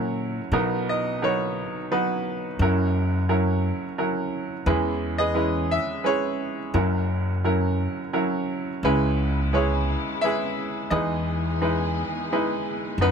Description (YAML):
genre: acoustic folk-pop ballad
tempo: 87 BPM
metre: 3/4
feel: straight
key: B major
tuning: A4 = 436 Hz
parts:
  - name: clear baby grand piano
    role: melody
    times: 0.0-13.1 s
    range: F#1 to E5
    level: -24 LUFS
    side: right 2 dB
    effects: none
  - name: upright bass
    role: bass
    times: 0.0-13.1 s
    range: C#2 to B2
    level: -25 LUFS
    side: left 1 dB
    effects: none
  - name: warm chamber string section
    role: sustained chords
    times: 8.8-13.1 s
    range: C#3 to G#4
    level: -33 LUFS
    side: left 5 dB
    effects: none
room: little or no reverb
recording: close, detailed microphones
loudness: -22 LUFS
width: side -6 dB against mid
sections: 0.5-13.1 A section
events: none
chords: 0.0 F#7; 0.5 Bmaj7; 2.6 F#7; 4.7 E6; 6.7 F#7; 8.8 C#m7; 10.9 Emaj7